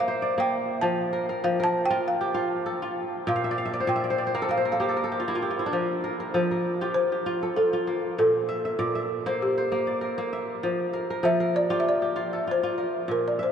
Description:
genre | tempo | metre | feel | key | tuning
west african traditional, West African string and xylophone music | 98 BPM | 4/4 | swing 54% on 16ths | F major | A4 = 442 Hz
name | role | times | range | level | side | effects
balafon | melody | 0.0-13.5 s | G4 to A5 | -27 LUFS | equal | none
kora | arpeggios | 0.0-13.5 s | Bb2 to G5 | -26 LUFS | equal | none
room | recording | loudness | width
wet cathedral reverb, RT60 7.7 s | in a vast, echoing space, nothing above 10.3 kHz | -24 LUFS | side -8 dB against mid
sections
0.0-5.7 A section; 5.7-13.5 B section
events
balafon solo 0.0-5.7; kora fill 3.3-5.7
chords
0.0 Bb; 0.8 F; 3.3 N.C.; 5.7 F; 8.2 Bb; 10.6 F

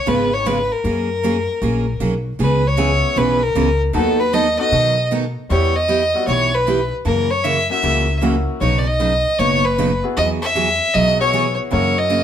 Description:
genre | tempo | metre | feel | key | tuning
country, western swing | 154 BPM | 4/4 | swing 66% on 8ths | B major | A4 = 440 Hz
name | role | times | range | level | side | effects
rich fiddle | melody | 0.0-12.2 s | A4 to E5 | -18 LUFS | left 1 dB | none
picked steel-string acoustic guitar | accompaniment | 0.1-12.2 s | B2 to B4 | -21 LUFS | right 3 dB | none
upright bass | bass | 0.1-12.2 s | F#1 to B2 | -21 LUFS | left 1 dB | none
bright upright piano | accompaniment | 2.8-12.2 s | G3 to A#4 | -25 LUFS | left 4 dB | none
room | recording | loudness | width
moderate studio reverb, RT60 0.9 s | band playing live in one room | -15 LUFS | side -9 dB against mid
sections
0.0-12.2 A section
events
none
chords
0.0 C#7; 0.8 F#add9; 2.4 C#m7; 4.0 B7/D#; 5.5 Em; 7.1 F#7; 8.6 Badd9; 10.2 Eadd9; 11.7 F#7

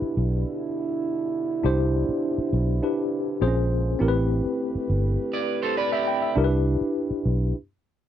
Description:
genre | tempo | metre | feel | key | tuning
soul | 102 BPM | 4/4 | straight | C major | A4 = 440 Hz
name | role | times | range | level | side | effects
tine electric piano | accompaniment | 0.0-7.6 s | C4 to G5 | -26 LUFS | left 2 dB | overdrive, fast stereo tremolo
dark French horn section | sustained chords | 0.0-7.5 s | B2 to B4 | -30 LUFS | right 4 dB | stereo widening
vintage muted fingered electric bass | bass | 0.0-7.5 s | G1 to C2 | -23 LUFS | equal | none
electric guitar at the edge of break-up | riff | 5.3-6.3 s | E4 to D5 | -26 LUFS | right 7 dB | wide subtle chorus
room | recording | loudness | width
little or no reverb | dry, close 1970s-style studio recording | -22 LUFS | side -10 dB against mid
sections
0.0-8.1 A section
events
stop 7.5-8.1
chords
0.0 Cmaj9; 3.4 Bbm9; 4.0 Am9; 6.4 Cmaj9

